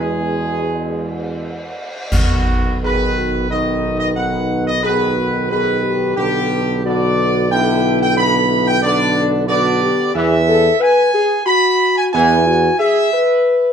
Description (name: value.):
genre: classical, ceremonial fanfare.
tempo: 90 BPM.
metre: 3/4.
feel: straight.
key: unclear.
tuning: A4 = 440 Hz.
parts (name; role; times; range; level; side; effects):
dark trumpet section; melody; 0.0-13.7 s; F#4 to B5; -18 LUFS; right 2 dB; none.
mellow French horn section; sustained chords; 0.0-13.7 s; G#3 to B4; -18 LUFS; left 4 dB; none.
warm trombone section; sustained chords; 0.0-12.4 s; B2 to B3; -22 LUFS; right 1 dB; none.
mellow tuba; bass; 0.0-12.7 s; B1 to E2; -20 LUFS; right 4 dB; none.
clash cymbals and concert bass drum; percussion; 2.1-3.5 s; none; -22 LUFS; equal; none.
room: moderate large studio reverb, RT60 1.1 s.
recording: none.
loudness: -14 LUFS.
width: side -7 dB against mid.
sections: 0.0-2.1 A section; 2.1-13.7 B section.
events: band accent 2.1-2.8.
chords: 0.0 E; 2.1 B; 6.2 G/B; 10.1 E.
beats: 0.70 1.41 | 2.12 2.83 3.50 | 4.17 4.84 5.50 | 6.17 6.84 7.51 | 8.17 8.83 9.48 | 10.15 10.81 11.47 | 12.14 12.81 13.48.